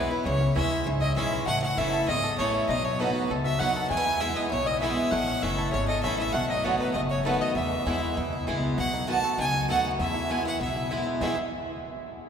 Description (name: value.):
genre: bluegrass.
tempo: 197 BPM.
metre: 4/4.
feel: straight.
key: E major.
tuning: A4 = 439 Hz.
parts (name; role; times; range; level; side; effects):
clear fiddle; melody; 0.0-11.4 s; B4 to A5; -30 LUFS; equal; none.
lap resonator guitar; second line; 0.0-8.4 s; B4 to G#5; -35 LUFS; left 3 dB; none.
picked swing-style acoustic guitar; accompaniment; 0.0-11.4 s; E2 to F#4; -30 LUFS; left 1 dB; none.
bluegrass banjo; arpeggios; 0.0-11.4 s; E3 to A4; -33 LUFS; right 2 dB; none.
mandolin; stabs; 0.0-11.3 s; A3 to B5; -34 LUFS; right 4 dB; none.
upright bass; bass; 0.0-11.4 s; F#1 to E2; -31 LUFS; left 1 dB; none.
room: wet cathedral reverb, RT60 5.3 s.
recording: recorded in a church or concert hall.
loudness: -24 LUFS.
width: side -7 dB against mid.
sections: 0.0-8.8 A section; 8.8-11.2 B section; 11.2-12.3 C section.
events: none.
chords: 0.3 C#m; 1.5 A; 2.7 B; 3.9 E; 5.1 A; 6.3 B7; 7.6 E; 8.8 B7; 10.0 E.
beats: | 0.26 0.56 0.87 1.17 | 1.48 1.78 2.08 2.39 | 2.69 3.00 3.30 3.61 | 3.91 4.21 4.52 4.82 | 5.13 5.43 5.74 6.04 | 6.34 6.65 6.95 7.26 | 7.56 7.87 8.17 8.48 | 8.78 9.09 9.39 9.69 | 10.00 10.30 10.61 10.91 | 11.22.